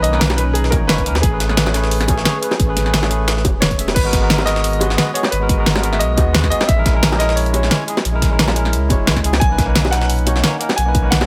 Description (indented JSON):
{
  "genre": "liquid drum and bass",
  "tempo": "176 BPM",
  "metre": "4/4",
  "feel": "swing 54% on 16ths",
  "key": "G# minor",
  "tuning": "A4 = 440 Hz",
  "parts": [
    { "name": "clear grand piano", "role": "melody", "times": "0.0-11.3 s", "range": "G#4 to G#5", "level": "-26 LUFS", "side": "equal", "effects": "dub echo" },
    { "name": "barky tine electric piano", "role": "accompaniment", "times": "0.0-11.3 s", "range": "A#2 to E5", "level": "-25 LUFS", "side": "equal", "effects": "subtle chorus, digital delay" },
    { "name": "airy breathy pad", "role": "sustained chords", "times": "0.0-3.9 s", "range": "D#3 to A#5", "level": "-31 LUFS", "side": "equal", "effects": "chorus, sidechain pumping" },
    { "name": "warm sub bass", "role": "bass", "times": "0.0-11.3 s", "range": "E1 to D#2", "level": "-21 LUFS", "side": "equal", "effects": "none" },
    { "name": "jungle sampler-style drum kit", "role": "drums", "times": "0.0-11.3 s", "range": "hi-hat, snare drum", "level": "-25 LUFS", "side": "equal", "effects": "high-pass filter on hats, high-pass filter on snare" },
    { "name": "pop drum kit", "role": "drums", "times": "0.0-11.3 s", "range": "crash cymbal, hi-hat, snare drum", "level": "-22 LUFS", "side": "equal", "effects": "none" },
    { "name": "bongos", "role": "percussion", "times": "0.3-11.3 s", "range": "none", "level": "-25 LUFS", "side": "equal", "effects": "none" },
    { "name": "electronic kick drum", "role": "drums", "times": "0.7-11.0 s", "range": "none", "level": "-21 LUFS", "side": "equal", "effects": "none" }
  ],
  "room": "little or no reverb",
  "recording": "none",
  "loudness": "-16 LUFS",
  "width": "mono",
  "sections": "0.0-4.0 A section; 4.0-11.3 A section",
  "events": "drop 0.0-4.0, 4.0-11.3; band accent 3.6",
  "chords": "0.0 Bmaj9; 1.2 Amaj9; 4.0 G#m9; 6.7 A#m7b5; 9.4 Bmaj9"
}